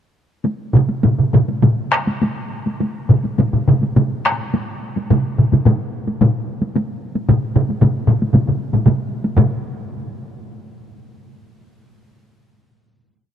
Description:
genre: japanese traditional, taiko drum ensemble.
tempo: 101-127 BPM.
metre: 4/4.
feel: straight.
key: none.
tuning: none.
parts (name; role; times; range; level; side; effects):
taiko ensemble; percussion; 0.4-9.6 s; none; -22 LUFS; equal; none.
taiko ensemble; percussion; 0.7-9.8 s; none; -18 LUFS; left 3 dB; none.
taiko ensemble; percussion; 0.8-9.8 s; none; -18 LUFS; right 4 dB; none.
room: moderate huge ambient reverb, RT60 4.4 s.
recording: dark, warm production, lossy compression artefacts.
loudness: -15 LUFS.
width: side -9 dB against mid.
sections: 0.5-9.4 A section; 9.4-11.3 final hit.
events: speeding up 0.5-11.3.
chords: none.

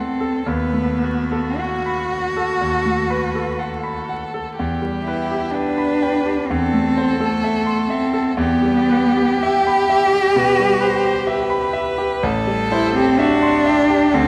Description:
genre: classical, slow romantic movement for piano trio.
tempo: 51-66 BPM.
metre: 4/4.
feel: rubato.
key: E minor.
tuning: A4 = 440 Hz.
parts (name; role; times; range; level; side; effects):
rich violin; melody; 0.0-14.3 s; F#4 to C5; -27 LUFS; equal; none.
clear cello; second line; 0.0-14.3 s; A3 to G4; -20 LUFS; equal; none.
bright grand piano; accompaniment; 0.0-14.3 s; A1 to C6; -24 LUFS; equal; none.
room: wet scoring stage reverb, RT60 2.2 s.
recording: vinyl crackle.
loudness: -19 LUFS.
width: mono.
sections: 0.0-14.3 A section.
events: none.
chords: 0.5 B7/D#; 4.6 Em; 6.5 Am/E; 8.4 Em; 12.2 Am7.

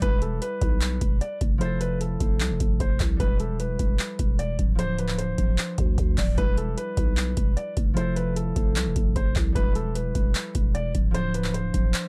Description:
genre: hip hop, trap.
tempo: 151 BPM.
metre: 4/4.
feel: half-time.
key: E phrygian.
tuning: A4 = 440 Hz.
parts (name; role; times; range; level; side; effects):
dark concert grand piano; melody; 0.0-12.1 s; A4 to D5; -35 LUFS; equal; tape echo.
concert harp; accompaniment; 0.0-12.1 s; F3 to C5; -35 LUFS; equal; none.
growling 808-style bass; bass; 0.0-11.9 s; D1 to D2; -30 LUFS; equal; none.
booming analog drum machine; drums; 0.0-12.0 s; handclaps, hi-hat, kick drum; -26 LUFS; equal; none.
room: little or no reverb.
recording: dark, warm production.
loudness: -25 LUFS.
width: mono.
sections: 0.0-12.1 A section.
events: none.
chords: 0.0 Em; 1.6 Fmaj7; 3.2 Em; 4.8 Dm7; 6.4 Em; 8.0 Fmaj7; 9.6 Em; 11.1 Dm7.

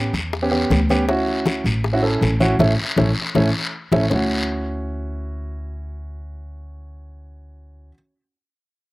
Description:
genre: Afro-Cuban jazz.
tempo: 159 BPM.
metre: 4/4.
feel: straight.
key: D major.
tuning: A4 = 440 Hz.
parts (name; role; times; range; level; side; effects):
warm baby grand piano; accompaniment; 0.0-7.9 s; A3 to A4; -21 LUFS; right 1 dB; none.
upright bass; bass; 0.0-7.9 s; A1 to E2; -23 LUFS; equal; none.
bongos; percussion; 0.1-4.2 s; none; -26 LUFS; left 5 dB; slapback echo.
congas; percussion; 0.1-4.2 s; none; -24 LUFS; left 2 dB; none.
guiro; percussion; 0.1-4.2 s; none; -28 LUFS; left 2 dB; none.
room: little or no reverb.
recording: recorded outdoors, with no room sound.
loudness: -17 LUFS.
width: side -19 dB against mid.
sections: 0.0-4.1 A section; 4.1-7.1 B section.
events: band accent 2.6-4.1; drum fill 3.4-4.1; grand piano fill 3.4-4.1.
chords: 0.0 A7 (rootless); 1.1 Dmaj7; 2.6 A; 4.1 Dmaj7.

